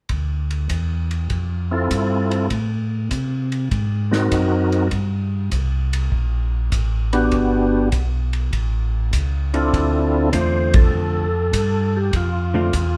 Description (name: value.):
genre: soul jazz organ trio.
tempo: 100 BPM.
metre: 4/4.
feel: swing 68% on 8ths.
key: D dorian.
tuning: A4 = 441 Hz.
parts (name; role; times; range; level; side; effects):
mellow tonewheel organ; bass; 0.1-13.0 s; G1 to C3; -23 LUFS; equal; slow rotary speaker.
warm soul drum kit; drums; 0.1-12.9 s; hi-hat, kick drum, ride cymbal, snare drum; -25 LUFS; equal; none.
percussive tonewheel organ; melody; 1.7-13.0 s; B3 to C5; -22 LUFS; equal; slow rotary speaker, overdrive, chorus vibrato.
hollow-body jazz guitar; accompaniment; 10.3-12.7 s; D3 to F4; -25 LUFS; equal; none.
room: wet studio reverb, RT60 0.9 s.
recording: heard from further back in the room.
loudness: -20 LUFS.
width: mono.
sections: 0.1-9.7 A section; 9.7-13.0 B section.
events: band accent 10.6.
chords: 0.1 Dm9; 2.5 Am; 3.7 G#9; 4.9 Gmadd9; 7.3 Gmaj7; 8.5 A; 9.7 Dm7.